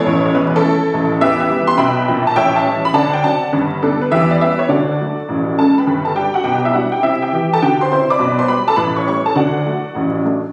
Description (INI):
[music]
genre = jazz, stride piano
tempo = 206 BPM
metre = 4/4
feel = swing 66% on 8ths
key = G major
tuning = A4 = 442 Hz
[part]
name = honky-tonk upright piano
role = solo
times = 0.0-10.4 s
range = E1 to D6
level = -16 LUFS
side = equal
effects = none
[sound]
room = moderate studio reverb, RT60 0.8 s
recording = recorded on a phone in the room, studio reverb, vinyl crackle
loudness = -16 LUFS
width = mono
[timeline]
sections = 0.0-5.9 A section; 5.9-10.5 B section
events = none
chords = 0.1 A; 1.2 Em; 2.4 A7; 3.0 D7; 3.5 G; 4.1 Em; 4.7 D; 5.9 G; 6.4 G/B; 7.0 C; 8.2 G/B; 8.8 A7; 9.4 D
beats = | 0.05 0.34 0.63 0.92 | 1.22 1.50 1.80 2.09 | 2.38 2.67 2.96 3.25 | 3.54 3.83 4.12 4.41 | 4.70 4.99 5.28 5.57 | 5.86 6.16 6.45 6.74 | 7.03 7.32 7.61 7.90 | 8.20 8.49 8.78 9.07 | 9.36 9.65 9.95 10.24